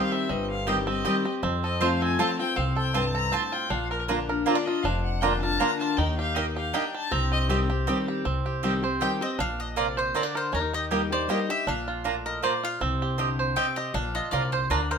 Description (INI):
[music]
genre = bluegrass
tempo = 158 BPM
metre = 3/4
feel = swing 54% on 8ths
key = C dorian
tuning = A4 = 440 Hz
[part]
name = bluegrass banjo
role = melody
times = 0.0-15.0 s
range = G3 to C5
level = -30 LUFS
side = right 4 dB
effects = none
[part]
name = clear fiddle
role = second line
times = 0.0-7.4 s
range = Bb4 to Bb5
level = -31 LUFS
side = left 4 dB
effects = none
[part]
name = picked steel-string acoustic guitar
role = accompaniment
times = 0.0-15.0 s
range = F2 to G4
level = -30 LUFS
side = left 3 dB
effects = none
[part]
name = upright bass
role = bass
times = 0.3-15.0 s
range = F1 to F2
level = -30 LUFS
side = left 1 dB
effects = none
[part]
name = mandolin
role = stabs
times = 0.7-14.8 s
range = Bb3 to Bb5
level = -29 LUFS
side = right 6 dB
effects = none
[part]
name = mandolin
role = melody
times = 9.0-15.0 s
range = Bb4 to G5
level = -30 LUFS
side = left 4 dB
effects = none
[sound]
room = moderate studio reverb, RT60 0.8 s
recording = minimal, uncompressed stereo recording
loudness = -24 LUFS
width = side -6 dB against mid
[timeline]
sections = 0.0-8.3 A section; 8.3-15.0 B section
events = fiddle solo 0.0-8.3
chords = 0.0 Cm; 1.4 F; 3.7 Bb; 6.0 Eb; 7.1 Cm; 9.4 Bb; 10.5 Eb; 11.7 Bb; 12.8 Cm; 13.9 Bb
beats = | 0.30 0.68 1.05 | 1.43 1.81 2.19 | 2.57 2.95 3.33 | 3.71 4.08 4.46 | 4.84 5.22 5.60 | 5.98 6.36 6.74 | 7.12 7.50 7.88 | 8.25 8.63 9.01 | 9.39 9.77 10.15 | 10.53 10.91 11.29 | 11.67 12.05 12.43 | 12.80 13.18 13.56 | 13.94 14.32 14.70